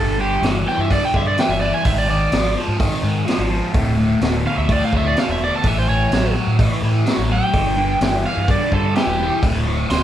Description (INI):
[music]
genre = blues rock power trio and southern rock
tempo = 127 BPM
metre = 4/4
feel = straight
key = unclear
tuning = A4 = 440 Hz
[part]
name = overdriven slide guitar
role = melody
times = 0.0-10.0 s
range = G4 to C6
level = -21 LUFS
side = right 2 dB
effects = none
[part]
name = overdriven electric guitar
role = riff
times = 0.0-10.0 s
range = D2 to F#3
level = -21 LUFS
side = left 1 dB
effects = phaser
[part]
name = overdriven fingered electric bass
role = bass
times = 0.0-10.0 s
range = D1 to A2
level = -21 LUFS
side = equal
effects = none
[part]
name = vintage drum kit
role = drums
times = 0.4-10.0 s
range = hi-hat, kick drum, snare drum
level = -22 LUFS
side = equal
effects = none
[sound]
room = moderate large studio reverb, RT60 0.8 s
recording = band playing live in one room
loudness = -16 LUFS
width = side -11 dB against mid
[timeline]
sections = 0.0-10.0 A section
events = none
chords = 0.0 G5; 1.9 G#5; 3.7 D5; 5.6 A; 7.5 G5; 9.4 D5